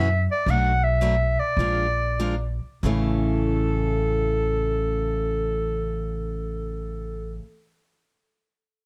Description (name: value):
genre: acoustic string swing (jazz manouche)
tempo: 88-118 BPM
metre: 4/4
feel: swing 63% on 8ths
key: A major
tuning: A4 = 440 Hz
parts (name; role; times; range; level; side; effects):
- clear clarinet; melody; 0.0-7.4 s; A4 to F#5; -28 LUFS; equal; plate reverb
- picked steel-string acoustic guitar; accompaniment; 0.0-7.4 s; A2 to Bb4; -31 LUFS; equal; none
- upright bass; bass; 0.0-7.4 s; A1 to F#2; -27 LUFS; equal; none
room: light reverb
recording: dark, warm production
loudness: -24 LUFS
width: mono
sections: 0.0-2.8 A section; 2.8-8.3 B section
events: slowing down 0.0-2.8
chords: 0.5 Bm7; 1.6 Bb7; 2.8 A